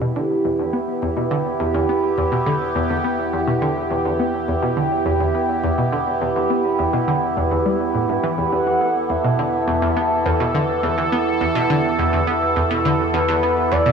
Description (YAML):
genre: ambient, sequencer-driven space music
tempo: 104 BPM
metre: 4/4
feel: straight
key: E minor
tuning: A4 = 439 Hz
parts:
  - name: sweeping resonant pad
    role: sustained chords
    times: 0.0-13.9 s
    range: B3 to A4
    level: -20 LUFS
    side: right 2 dB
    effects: chorus, phaser
  - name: analog pluck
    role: riff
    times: 0.0-13.9 s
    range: E2 to B3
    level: -22 LUFS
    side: equal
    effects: chorus, analog delay
  - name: analog drone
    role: bass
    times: 1.4-13.9 s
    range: E2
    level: -33 LUFS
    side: left 1 dB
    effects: chorus
  - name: wind-like tuned noise texture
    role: texture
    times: 0.5-13.9 s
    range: G4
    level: -34 LUFS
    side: right 1 dB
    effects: none
  - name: expressive portamento lead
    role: melody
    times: 8.5-13.9 s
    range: A4 to F#5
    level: -23 LUFS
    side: equal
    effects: chorus, analog delay
room: wet plate reverb, RT60 3.1 s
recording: small room ambience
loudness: -17 LUFS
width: side -6 dB against mid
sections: 0.0-13.9 A section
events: fade-in on synth drone 0.0-13.9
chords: 0.0 Em